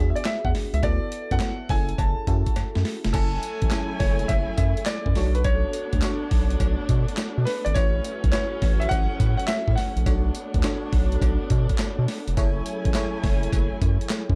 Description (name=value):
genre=R&B, new jack swing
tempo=104 BPM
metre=4/4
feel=swing 67% on 16ths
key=unclear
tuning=A4 = 442 Hz
part: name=warm concert grand piano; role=melody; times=0.0-11.5 s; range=A4 to A5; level=-32 LUFS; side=equal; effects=none
part: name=FM electric piano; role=accompaniment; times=0.0-14.4 s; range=B3 to G#5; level=-35 LUFS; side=equal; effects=chorus, phaser
part: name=round analog bass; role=bass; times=0.0-14.4 s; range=F1 to B2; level=-26 LUFS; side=equal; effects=none
part: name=breakbeat sampler-style drum kit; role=drums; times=0.2-14.4 s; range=crash cymbal, handclaps, hi-hat, kick drum, snare drum, tambourine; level=-27 LUFS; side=equal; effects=none
part: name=cowbell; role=percussion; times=0.3-14.3 s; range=none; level=-43 LUFS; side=equal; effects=none
part: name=warm studio string section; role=sustained chords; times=3.1-14.4 s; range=F#3 to G#5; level=-36 LUFS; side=equal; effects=none
room=little or no reverb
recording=dark, warm production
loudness=-24 LUFS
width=mono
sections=0.0-3.1 A section; 3.1-14.4 B section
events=drum fill 2.6-3.1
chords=0.0 E7; 0.8 D6; 1.7 F#m9; 5.2 Bm9; 7.8 A69; 10.1 Bm9; 12.4 F#m9